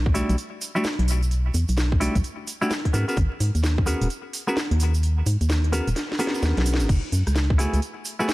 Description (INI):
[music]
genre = UK garage, two-step garage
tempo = 129 BPM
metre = 4/4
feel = swing 63% on 16ths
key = unclear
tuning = A4 = 440 Hz
[part]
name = organ-like FM bass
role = bass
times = 0.0-7.8 s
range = D#1 to G#2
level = -21 LUFS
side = equal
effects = none
[part]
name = clean electric guitar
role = stabs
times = 0.1-8.3 s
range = G3 to A#4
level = -27 LUFS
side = equal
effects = ping-pong delay
[part]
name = electronic kick drum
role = drums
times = 0.1-3.9, 6.9-7.6 s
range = none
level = -22 LUFS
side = equal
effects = none
[part]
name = garage drum kit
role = drums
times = 0.1-8.3 s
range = crash cymbal, hi-hat, rim click, snare drum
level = -29 LUFS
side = equal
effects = none
[part]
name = tube shaker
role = percussion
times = 0.2-8.3 s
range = none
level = -37 LUFS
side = right 4 dB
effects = none
[sound]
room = little or no reverb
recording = vinyl crackle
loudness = -21 LUFS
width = side -19 dB against mid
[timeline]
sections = 0.0-8.3 A section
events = kick drops out 5.0-6.9; drum fill 6.0-6.9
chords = 0.0 Em11; 2.9 G#m11; 6.9 F#m11